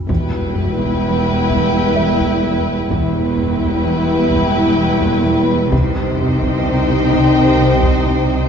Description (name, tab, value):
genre	cinematic, suspense film score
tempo	64 BPM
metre	3/4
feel	straight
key	E harmonic minor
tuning	A4 = 436 Hz
part	swarming drone	drone	0.0-8.5 s	C2 to E2	-25 LUFS	left 1 dB	none
part	rich studio violin section	melody	0.1-8.5 s	G5	-25 LUFS	left 3 dB	none
part	clear studio violin section	second line	0.1-8.5 s	B4 to C5	-22 LUFS	left 2 dB	none
part	rich studio viola section	accompaniment	0.1-8.5 s	Eb4 to E4	-20 LUFS	left 2 dB	none
part	dark French horn section	sustained chords	0.1-8.5 s	B3 to G4	-24 LUFS	equal	none
part	warm trombone section	sustained chords	0.1-8.4 s	Eb3 to G3	-25 LUFS	right 2 dB	none
part	warm studio cello section	riff	0.1-8.4 s	E2 to C4	-23 LUFS	equal	none
part	bright studio double bass section	bass	0.1-8.5 s	E1 to C2	-22 LUFS	right 2 dB	none
part	rich studio cello section	bass	0.1-8.5 s	E2 to C3	-21 LUFS	right 3 dB	none
part	taiko ensemble	drums	0.1-8.5 s	none	-24 LUFS	equal	none
part	felt-muted upright piano	texture	2.0-5.7 s	E5	-29 LUFS	left 3 dB	none
room	wet scoring stage reverb, RT60 1.9 s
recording	heard from further back in the room, nothing above 7.9 kHz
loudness	-13 LUFS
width	side -7 dB against mid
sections	0.1-8.5 A section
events	none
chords	0.1 Em; 5.7 Cm